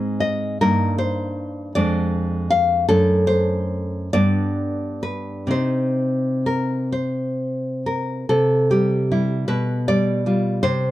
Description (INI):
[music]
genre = romantic piece for solo classical guitar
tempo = 42-54 BPM (dotted quarters)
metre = 6/8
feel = rubato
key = C minor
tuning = A4 = 440 Hz
[part]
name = nylon-string guitar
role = solo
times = 0.0-10.9 s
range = F2 to F5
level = -18 LUFS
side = equal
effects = none
[sound]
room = moderate studio reverb, RT60 0.6 s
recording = dark, warm production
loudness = -18 LUFS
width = side -15 dB against mid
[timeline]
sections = 0.0-8.3 A section; 8.3-10.9 B section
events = none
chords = 0.0 Ab; 0.6 Eb/G; 1.8 Ddim/F; 2.9 D7/F#; 4.1 G; 5.5 Cm; 8.3 C; 9.5 G7/B